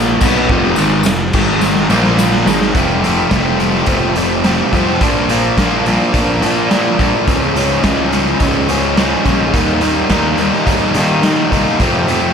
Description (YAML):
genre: classic rock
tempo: 106 BPM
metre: 4/4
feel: straight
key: unclear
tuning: A4 = 439 Hz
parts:
  - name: overdriven semi-hollow guitar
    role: riff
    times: 0.0-12.3 s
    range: F2 to Eb4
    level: -13 LUFS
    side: equal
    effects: slapback echo
  - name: fuzz picked electric bass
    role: bass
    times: 0.0-12.3 s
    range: F1 to Eb3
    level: -20 LUFS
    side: equal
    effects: overdrive
  - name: raw garage drum kit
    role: drums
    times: 0.2-12.2 s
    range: crash cymbal, hi-hat, kick drum, ride cymbal, snare drum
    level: -16 LUFS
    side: equal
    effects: none
  - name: tambourine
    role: percussion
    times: 0.2-2.6 s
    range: none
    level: -32 LUFS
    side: left 9 dB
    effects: none
room: moderate lush hall reverb, RT60 2.8 s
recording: big arena sound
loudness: -11 LUFS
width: side -7 dB against mid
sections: 0.0-2.7 A section; 2.7-12.3 B section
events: drum fill 1.6-2.7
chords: 0.2 F5; 1.3 Ab5; 1.9 Bb5; 2.5 Ab5; 2.7 F; 5.0 Bb; 7.3 Db; 9.5 Eb; 11.8 F